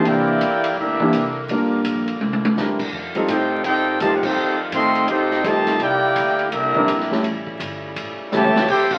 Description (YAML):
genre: jazz, big band swing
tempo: 167 BPM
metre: 4/4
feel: swing 64% on 8ths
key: C major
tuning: A4 = 440 Hz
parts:
  - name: warm trumpet section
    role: melody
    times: 0.0-9.0 s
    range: D4 to C6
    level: -22 LUFS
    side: equal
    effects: none
  - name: warm trombone section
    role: second line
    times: 0.0-9.0 s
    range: C3 to G4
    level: -26 LUFS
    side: equal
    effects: none
  - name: warm grand piano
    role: accompaniment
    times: 0.0-8.5 s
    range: E3 to Bb4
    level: -23 LUFS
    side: equal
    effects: none
  - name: warm saxophone section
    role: sustained chords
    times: 0.0-9.0 s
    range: C#3 to F4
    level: -34 LUFS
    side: equal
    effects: none
  - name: upright bass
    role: bass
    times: 0.0-9.0 s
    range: G1 to A2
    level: -38 LUFS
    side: equal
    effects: none
  - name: swinging big-band drum kit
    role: drums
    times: 0.1-9.0 s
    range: crash cymbal, hi-hat, kick drum, ride cymbal, snare drum, toms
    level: -30 LUFS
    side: equal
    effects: none
room: wet studio reverb, RT60 0.7 s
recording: very old 78 rpm record, vinyl crackle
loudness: -20 LUFS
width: mono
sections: 0.0-9.0 A section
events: drum fill 2.2-2.6, 8.3-8.7; band accent 4.2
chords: 0.1 C9; 1.5 Gm7; 2.2 C9; 2.9 F9; 5.8 C9; 7.2 A7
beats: | 0.06 0.41 0.77 1.13 | 1.49 1.85 2.21 2.57 | 2.92 3.28 3.64 4.00 | 4.36 4.72 5.08 5.44 | 5.80 6.16 6.52 6.88 | 7.24 7.60 7.96 8.32 | 8.68